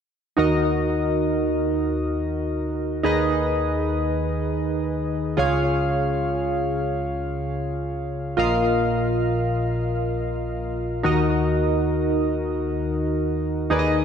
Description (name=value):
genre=pop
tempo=free time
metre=none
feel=none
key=Eb minor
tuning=A4 = 440 Hz
part: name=warm analog keys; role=solo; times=0.4-14.0 s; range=Bb1 to F5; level=-21 LUFS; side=equal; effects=chorus, ping-pong delay
room=wet scoring stage reverb, RT60 1.8 s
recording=none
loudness=-21 LUFS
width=side -7 dB against mid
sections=0.4-11.0 A section; 11.0-14.0 B section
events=none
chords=0.4 Ebm; 3.0 Abm/Eb; 5.4 Db; 8.4 Bbsus4; 11.0 Ebm